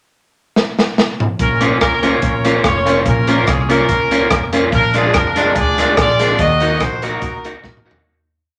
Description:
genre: ska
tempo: 144 BPM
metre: 4/4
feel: swing 54% on 8ths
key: Bb minor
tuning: A4 = 438 Hz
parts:
  - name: crunchy breakbeat drum kit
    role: drums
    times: 0.6-8.0 s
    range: hi-hat, kick drum, rim click, snare drum, toms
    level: -21 LUFS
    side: equal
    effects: slapback echo
  - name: clear horn section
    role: melody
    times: 1.4-7.9 s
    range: Db4 to Eb5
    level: -19 LUFS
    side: equal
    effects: none
  - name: upright bass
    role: bass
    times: 1.4-8.0 s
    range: F1 to F2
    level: -23 LUFS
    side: equal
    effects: none
  - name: electric guitar through a small old amp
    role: accompaniment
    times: 1.6-8.0 s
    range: Ab3 to Gb4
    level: -19 LUFS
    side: equal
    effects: slapback echo
  - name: tonewheel organ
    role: stabs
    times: 1.6-8.0 s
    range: Db4 to Bb4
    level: -26 LUFS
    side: equal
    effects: slow rotary speaker
room: wet club reverb, RT60 0.7 s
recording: none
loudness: -15 LUFS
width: mono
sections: 0.0-1.4 pickup bar; 1.4-8.0 head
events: drum fill 0.6-1.4, 7.6-8.0; fade-out 6.4-8.0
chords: 0.0 N.C.; 1.4 Bbm; 4.7 Bb7; 6.4 Ebm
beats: 0.15 0.56 0.98 | 1.39 1.81 2.23 2.64 | 3.06 3.48 3.89 4.31 | 4.72 5.14 5.56 5.97 | 6.39 6.80 7.22 7.63

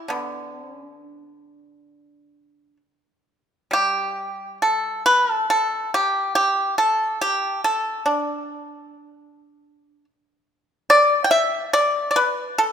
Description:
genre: chinese traditional, Chinese solo plucked strings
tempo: 64-74 BPM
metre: 4/4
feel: rubato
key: D zhi mode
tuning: A4 = 440 Hz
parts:
  - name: pipa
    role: solo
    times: 0.0-12.7 s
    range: D3 to G5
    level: -18 LUFS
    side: equal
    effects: none
room: light reverb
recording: minimal, uncompressed stereo recording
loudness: -18 LUFS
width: side -8 dB against mid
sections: 0.0-3.7 A section; 3.7-12.7 B section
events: none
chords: none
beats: | 0.11 0.98 1.88 2.81 | 3.73 4.61 5.48 6.34 | 7.20 8.03 8.85 9.67 | 10.49 11.33 12.19

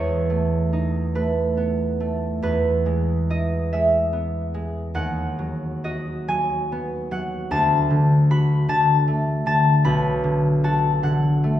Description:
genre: classical, solo harp piece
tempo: 44-52 BPM (dotted quarters)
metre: 6/8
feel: rubato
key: unclear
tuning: A4 = 439 Hz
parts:
  - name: concert harp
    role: solo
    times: 0.0-11.6 s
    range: B1 to B5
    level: -19 LUFS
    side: equal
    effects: none
room: wet recital hall reverb, RT60 1.6 s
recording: heard from further back in the room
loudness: -19 LUFS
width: side -12 dB against mid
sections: 0.0-11.6 A section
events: none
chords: 0.0 B7/E; 2.4 E; 5.0 B/D#; 7.5 D; 9.9 Bm7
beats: 1.15 | 2.43 3.71 | 4.95 6.28 | 7.51 8.69 | 9.85 11.02

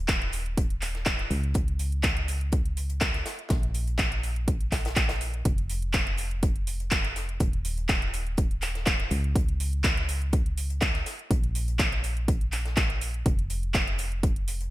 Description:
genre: piano house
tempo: 123 BPM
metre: 4/4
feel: straight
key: unclear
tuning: A4 = 439 Hz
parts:
  - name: solid FM bass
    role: bass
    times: 0.0-14.7 s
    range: Eb1 to Db2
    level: -30 LUFS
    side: equal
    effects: sidechain pumping
  - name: electronic kick drum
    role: drums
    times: 0.1-14.3 s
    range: none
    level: -27 LUFS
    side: equal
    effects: small room ambience
  - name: house drum kit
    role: drums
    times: 0.1-14.7 s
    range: handclaps, hi-hat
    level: -30 LUFS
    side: equal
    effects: small room ambience, gated reverb
  - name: modern studio drum kit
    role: drums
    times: 0.1-14.7 s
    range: hi-hat, snare drum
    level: -39 LUFS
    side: left 1 dB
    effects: sidechain pumping on hats, high-pass filter on hats, small room ambience, high-pass filter on snare, high-pass filter on room, gated reverb
room: little or no reverb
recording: bright 1980s-style digital production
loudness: -25 LUFS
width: side -16 dB against mid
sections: 0.0-14.7 A section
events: none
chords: none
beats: 0.09 0.57 1.06 | 1.55 2.04 2.53 3.01 | 3.50 3.99 4.48 4.97 | 5.45 5.94 6.43 6.92 | 7.41 7.89 8.38 8.87 | 9.36 9.84 10.33 10.82 | 11.31 11.79 12.28 12.77 | 13.26 13.75 14.23

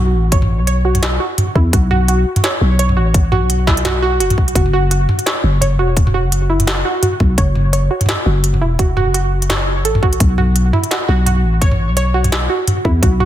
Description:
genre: half-time drum and bass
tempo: 170 BPM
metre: 4/4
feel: swing 56% on 16ths, half-time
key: unclear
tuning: A4 = 441 Hz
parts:
  - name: warbly dusty pluck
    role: arpeggios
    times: 0.0-13.3 s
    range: E4 to C#5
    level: -19 LUFS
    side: right 3 dB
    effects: chorus, tape echo
  - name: growling 808-style bass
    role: bass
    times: 0.0-13.3 s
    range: E1 to E2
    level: -15 LUFS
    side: equal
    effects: none
  - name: electronic kick drum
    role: drums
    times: 0.3-13.1 s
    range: none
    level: -14 LUFS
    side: equal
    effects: none
  - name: industrial drum kit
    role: drums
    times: 0.3-13.3 s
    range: hi-hat, snare drum, toms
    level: -18 LUFS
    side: equal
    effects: none
room: light reverb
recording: dense, heavily limited modern master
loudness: -12 LUFS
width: side -12 dB against mid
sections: 0.0-13.3 A section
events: none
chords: 0.0 B5; 4.6 F#7(no3); 10.2 B5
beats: | 0.32 0.67 1.03 1.38 | 1.73 2.08 2.44 2.79 | 3.14 3.50 3.85 4.20 | 4.56 4.91 5.26 5.61 | 5.97 6.32 6.67 7.03 | 7.38 7.73 8.09 8.44 | 8.79 9.14 9.50 9.85 | 10.20 10.56 10.91 11.26 | 11.61 11.97 12.32 12.67 | 13.03

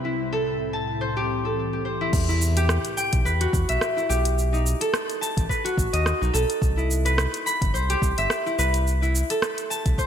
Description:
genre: organic downtempo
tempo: 107 BPM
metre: 4/4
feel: swing 56% on 16ths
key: E harmonic minor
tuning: A4 = 440 Hz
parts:
  - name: ethereal airy pad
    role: sustained chords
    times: 0.0-2.1 s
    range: C2 to E4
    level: -31 LUFS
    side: left 2 dB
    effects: ensemble chorus, built-in reverb, sidechain pumping
  - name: concert harp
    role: arpeggios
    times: 0.0-10.1 s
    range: D#4 to B5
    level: -25 LUFS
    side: equal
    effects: ping-pong delay
  - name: round analog bass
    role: bass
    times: 2.1-9.9 s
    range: G1 to E2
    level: -23 LUFS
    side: equal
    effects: sidechain pumping
  - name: electronic kick drum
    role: drums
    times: 2.1-10.1 s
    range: none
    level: -25 LUFS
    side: equal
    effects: none
  - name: organic electronic drum kit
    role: drums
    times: 2.1-10.1 s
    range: crash cymbal, hi-hat, rim click, shaker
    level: -29 LUFS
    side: right 1 dB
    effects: none
room: light reverb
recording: bright 1980s-style digital production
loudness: -21 LUFS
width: side -9 dB against mid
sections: 0.0-2.1 A section; 2.1-10.1 B section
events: none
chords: 0.0 Am7/C; 2.1 Emadd9; 4.4 B7; 6.6 Cmaj7; 8.9 Am7/C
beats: 0.45 1.01 1.57 | 2.13 2.69 3.25 3.81 | 4.38 4.94 5.50 6.06 | 6.62 7.18 7.74 8.30 | 8.86 9.42 9.98

